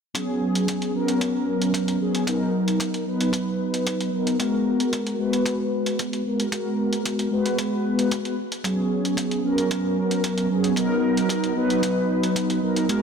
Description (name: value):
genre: nu-disco, nu disco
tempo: 113 BPM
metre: 4/4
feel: straight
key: unclear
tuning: A4 = 443 Hz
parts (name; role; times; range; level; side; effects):
- mellow synth brass; accompaniment; 0.1-13.0 s; F#3 to B4; -21 LUFS; equal; chorus, cassette tape, sidechain pumping, analog delay
- kick drum; drums; 0.1-13.0 s; none; -33 LUFS; equal; high-pass filter on kick, high-pass filter on snare, high-pass filter on room
- electronic hi-hat; drums; 0.2-13.0 s; none; -32 LUFS; equal; none
room: moderate lush hall reverb, RT60 2.0 s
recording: dreamy mix soaked in reverb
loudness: -21 LUFS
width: side -6 dB against mid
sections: 0.2-13.0 A section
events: none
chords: 0.2 C#7sus4; 2.3 Bmaj7; 4.4 G#m9; 8.6 C#7sus4; 10.8 Bmaj7